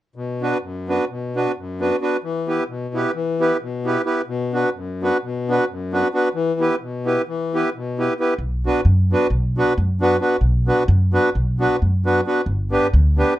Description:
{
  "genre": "balkan folk, Balkan wedding band",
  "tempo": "free time",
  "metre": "none",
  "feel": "none",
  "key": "B minor",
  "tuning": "A4 = 440 Hz",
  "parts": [
    { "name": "accordion", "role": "accompaniment", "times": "0.2-13.3 s", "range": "F#2 to B4", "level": "-19 LUFS", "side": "equal", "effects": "none" },
    { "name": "upright bass", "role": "bass", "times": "8.4-13.2 s", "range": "G1 to F#2", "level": "-18 LUFS", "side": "equal", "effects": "none" }
  ],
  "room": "light reverb",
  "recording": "dark, warm production",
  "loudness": "-18 LUFS",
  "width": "side -14 dB against mid",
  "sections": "0.2-8.4 A section; 8.4-13.4 B section",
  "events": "none",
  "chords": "0.2 Bm; 2.2 Em; 4.3 Bm; 6.3 Em; 8.4 Bm; 12.5 G",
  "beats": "free time"
}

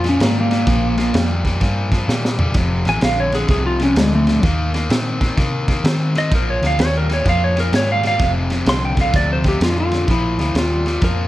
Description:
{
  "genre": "electric blues shuffle",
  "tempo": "128 BPM",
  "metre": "4/4",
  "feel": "swing 65% on 8ths",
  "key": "Bb mixolydian",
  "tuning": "A4 = 440 Hz",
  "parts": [
    { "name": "clean lap steel guitar", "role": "melody", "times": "0.0-11.3 s", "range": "Ab3 to C6", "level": "-19 LUFS", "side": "equal", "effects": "none" },
    { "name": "cranked stack guitar", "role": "riff", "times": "0.0-11.3 s", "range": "F2 to C4", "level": "-22 LUFS", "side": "left 2 dB", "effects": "overdrive" },
    { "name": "vintage muted fingered electric bass", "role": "bass", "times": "0.0-11.3 s", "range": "F1 to Eb3", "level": "-20 LUFS", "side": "equal", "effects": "none" },
    { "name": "crunchy breakbeat drum kit", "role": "drums", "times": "0.0-11.2 s", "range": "kick drum, ride cymbal, snare drum, toms", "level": "-20 LUFS", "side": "equal", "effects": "none" }
  ],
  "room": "light reverb",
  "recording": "none",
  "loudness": "-15 LUFS",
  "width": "side -15 dB against mid",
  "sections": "0.0-10.1 A section; 10.1-11.3 B section",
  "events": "electric slide guitar solo 0.0-10.1; drum fill 2.1-2.6",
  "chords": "0.0 Bb7(no3); 2.6 F5; 4.4 Eb5; 6.3 Bb7(no3); 8.2 F5; 10.1 Bb",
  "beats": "0.20 | 0.67 1.14 1.61 2.08 | 2.55 3.02 3.49 3.96 | 4.43 4.90 5.37 5.84 | 6.31 6.78 7.25 7.73 | 8.20 8.67 9.14 9.61 | 10.08 10.55 11.03"
}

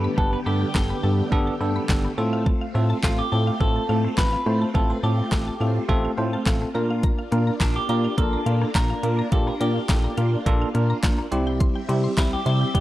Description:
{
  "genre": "dance-pop",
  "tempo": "105 BPM",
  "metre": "4/4",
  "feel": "straight",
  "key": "unclear",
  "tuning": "A4 = 440 Hz",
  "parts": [
    { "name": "twelve-string electric guitar", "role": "melody", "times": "0.0-12.8 s", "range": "D4 to B4", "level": "-30 LUFS", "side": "equal", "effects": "phaser, analog delay" },
    { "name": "bell-like tine electric piano", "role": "accompaniment", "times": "0.0-12.8 s", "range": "G3 to C5", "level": "-26 LUFS", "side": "right 1 dB", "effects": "fast stereo tremolo" },
    { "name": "phased string machine", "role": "sustained chords", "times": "0.0-12.8 s", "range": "D3 to E5", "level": "-32 LUFS", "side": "equal", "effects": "ensemble chorus, phaser, sidechain pumping" },
    { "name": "mallet-like synth pluck", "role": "arpeggios", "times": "0.0-12.7 s", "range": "A3 to C6", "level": "-36 LUFS", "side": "left 3 dB", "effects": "chorus, sidechain pumping, analog delay" },
    { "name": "chorused synth bass", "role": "bass", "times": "0.0-12.8 s", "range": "G1 to C3", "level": "-23 LUFS", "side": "equal", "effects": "sidechain pumping" },
    { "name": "pop drum kit", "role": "drums", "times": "0.2-12.8 s", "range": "handclaps, hi-hat, kick drum, snare drum", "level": "-22 LUFS", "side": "equal", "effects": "overdrive" }
  ],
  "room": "little or no reverb",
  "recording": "dry, gritty hardware recording",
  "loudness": "-20 LUFS",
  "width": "side -15 dB against mid",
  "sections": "0.0-12.8 A section",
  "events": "none",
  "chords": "0.0 Gadd9; 2.2 F/A; 6.7 Bb; 11.3 C",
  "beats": "| 0.18 0.75 1.32 1.89 | 2.46 3.04 3.61 4.18 | 4.75 5.32 5.89 6.46 | 7.04 7.61 8.18 8.75 | 9.32 9.89 10.46 11.04 | 11.61 12.18 12.75"
}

